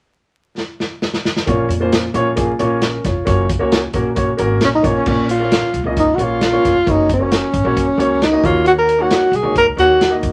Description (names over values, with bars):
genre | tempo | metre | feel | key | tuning
uptempo 1960s-style soul | 134 BPM | 4/4 | straight | Bb minor | A4 = 440 Hz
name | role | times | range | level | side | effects
warm soul drum kit | drums | 0.6-10.3 s | crash cymbal, hi-hat, kick drum, snare drum | -22 LUFS | equal | none
warm upright piano | accompaniment | 1.5-10.3 s | Bb2 to Eb5 | -21 LUFS | equal | none
upright bass | bass | 1.5-10.3 s | F1 to F2 | -25 LUFS | equal | none
breathy tenor saxophone | melody | 4.6-10.2 s | Db4 to Bb4 | -17 LUFS | equal | none
room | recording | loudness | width
moderate club reverb, RT60 0.5 s | vinyl crackle | -16 LUFS | mono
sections
0.0-1.5 A section; 1.5-5.1 B section; 5.1-10.3 C section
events
drum fill 0.6-1.5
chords
0.0 N.C.; 1.5 Bbm; 3.3 Gb; 4.8 Bbm; 6.9 Gb; 8.4 Ebm7